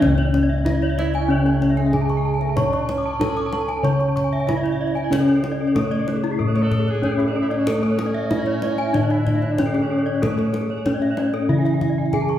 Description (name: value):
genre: Balinese gamelan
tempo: 94 BPM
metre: 4/4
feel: straight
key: C# pelog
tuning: A4 = 440 Hz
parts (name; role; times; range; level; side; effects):
- gamelan-type bronze metallophone; melody; 0.0-12.4 s; A3 to C#5; -22 LUFS; equal; none
- gamelan-type bronze metallophone; accompaniment; 0.0-12.4 s; C#3 to C#4; -27 LUFS; right 1 dB; none
- gamelan-type bronze metallophone; arpeggios; 0.0-12.4 s; E4 to D6+35c; -28 LUFS; left 4 dB; none
- gamelan-type bossed gongs; bass; 0.0-12.4 s; C#2 to C#5; -23 LUFS; left 1 dB; none
- kendang; percussion; 0.0-12.4 s; none; -30 LUFS; left 1 dB; none
- gamelan-type bronze metallophone; arpeggios; 0.1-12.3 s; G#4 to C#6; -30 LUFS; right 3 dB; none
- bright alto saxophone; second line; 1.0-11.0 s; G#3 to C#5; -31 LUFS; right 2 dB; none
room: wet recital hall reverb, RT60 1.8 s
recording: recorded in a church or concert hall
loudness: -18 LUFS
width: side -11 dB against mid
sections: 0.0-12.4 A section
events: none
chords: none